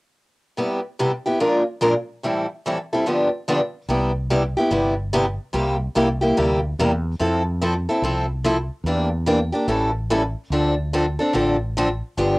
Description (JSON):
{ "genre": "acoustic string swing (jazz manouche)", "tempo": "145 BPM", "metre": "4/4", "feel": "swing 63% on 8ths", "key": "C major", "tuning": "A4 = 440 Hz", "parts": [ { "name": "picked steel-string acoustic guitar", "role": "accompaniment", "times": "0.6-12.4 s", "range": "G2 to Bb4", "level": "-19 LUFS", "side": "equal", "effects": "cassette tape" }, { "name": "mellow fretless electric bass", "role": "bass", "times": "3.9-12.4 s", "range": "G1 to F2", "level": "-24 LUFS", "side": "equal", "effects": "none" } ], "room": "light reverb", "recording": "home recording on cassette", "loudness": "-19 LUFS", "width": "side -25 dB against mid", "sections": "0.6-3.9 A section; 3.9-12.4 B section", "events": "none", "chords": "0.6 Cmaj7; 1.4 Bb7; 2.2 Am7; 3.1 G7; 3.9 Cmaj7; 5.5 C7; 7.2 Fmaj7; 8.9 Em7b5; 9.7 A7; 10.5 Dm7" }